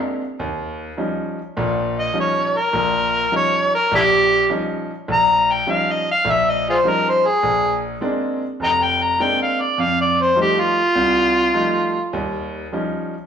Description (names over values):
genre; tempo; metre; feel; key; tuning
blues; 102 BPM; 4/4; swing 65% on 8ths; unclear; A4 = 440 Hz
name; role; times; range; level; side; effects
clear grand piano; accompaniment; 0.0-13.1 s; F1 to Eb4; -23 LUFS; equal; none
overdriven harmonica; melody; 2.0-12.3 s; D4 to Bb5; -16 LUFS; equal; none
room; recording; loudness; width
wet large studio reverb, RT60 1.2 s; band playing live in one room; -16 LUFS; side -8 dB against mid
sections
0.0-13.3 A section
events
harmonica solo 0.0-13.3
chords
0.4 Eb9; 7.4 Bb9; 9.8 F9; 12.1 Eb9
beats
| 0.40 0.98 1.56 2.15 | 2.74 3.32 3.91 4.50 | 5.08 5.67 6.26 6.84 | 7.43 8.02 8.61 9.20 | 9.79 10.37 10.96 11.55 | 12.14 12.73